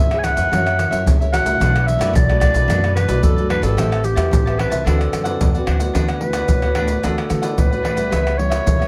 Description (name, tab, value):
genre	samba and choro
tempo	111 BPM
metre	4/4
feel	straight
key	unclear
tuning	A4 = 440 Hz
part	growling clarinet	melody	0.0-8.9 s	G4 to G#5	-24 LUFS	equal	none
part	nylon-string guitar	accompaniment	0.0-8.9 s	G#2 to B4	-28 LUFS	equal	none
part	upright bass	bass	0.0-8.9 s	Ab1 to D3	-23 LUFS	equal	none
part	cavaquinho	accompaniment	0.1-8.9 s	D4 to A5	-29 LUFS	equal	none
part	maracas, pandeiro, tamborim and surdo	percussion	0.1-8.9 s	none	-22 LUFS	equal	none
room	light reverb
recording	none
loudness	-18 LUFS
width	mono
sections	0.0-5.9 A section; 5.9-8.9 B section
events	clarinet solo 5.9-8.9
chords	0.0 C#m7; 0.5 F#7; 1.6 Bm7; 3.8 Am9; 4.9 D13; 5.9 D6; 8.1 C#m7b5